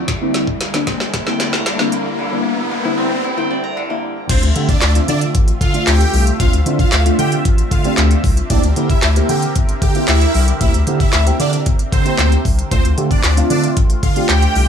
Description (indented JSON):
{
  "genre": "dance-pop",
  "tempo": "114 BPM",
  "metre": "4/4",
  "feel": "straight",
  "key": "D minor",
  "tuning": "A4 = 440 Hz",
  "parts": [
    { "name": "warm analog pad", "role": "sustained chords", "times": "0.0-14.7 s", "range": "D2 to E5", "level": "-24 LUFS", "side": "equal", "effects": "chorus, sidechain pumping" },
    { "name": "koto", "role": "arpeggios", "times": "0.0-6.7 s", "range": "D3 to Bb5", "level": "-26 LUFS", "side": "left 1 dB", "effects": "sidechain pumping, tape echo" },
    { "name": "riser", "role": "sound effects", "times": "0.0-3.2 s", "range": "none", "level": "-25 LUFS", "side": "right 1 dB", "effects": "none" },
    { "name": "smooth R&B drum kit", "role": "drums", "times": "0.1-14.7 s", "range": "crash cymbal, handclaps, hi-hat, kick drum, snare drum", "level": "-17 LUFS", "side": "equal", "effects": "none" },
    { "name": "deep mellow chord stab", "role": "accompaniment", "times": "0.2-14.5 s", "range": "D3 to G4", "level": "-21 LUFS", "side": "equal", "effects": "chorus, phaser, sidechain pumping" },
    { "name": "supersaw chords", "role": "melody", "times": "4.3-14.7 s", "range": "C4 to G5", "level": "-21 LUFS", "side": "right 2 dB", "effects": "phaser, sidechain pumping" },
    { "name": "round analog bass", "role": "bass", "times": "4.3-14.7 s", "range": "G1 to D3", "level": "-16 LUFS", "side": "equal", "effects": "sidechain pumping" }
  ],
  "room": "digital ambience",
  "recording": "high-pass filter",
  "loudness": "-13 LUFS",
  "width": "side -8 dB against mid",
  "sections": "0.0-4.3 A section; 4.3-14.7 B section",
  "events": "build-up 0.0-4.3; drum fill 0.0-2.2; riser 0.0-4.3; drop 4.3-14.7",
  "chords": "0.1 C7/D; 4.3 Dm7; 8.5 C7; 12.7 Dm7"
}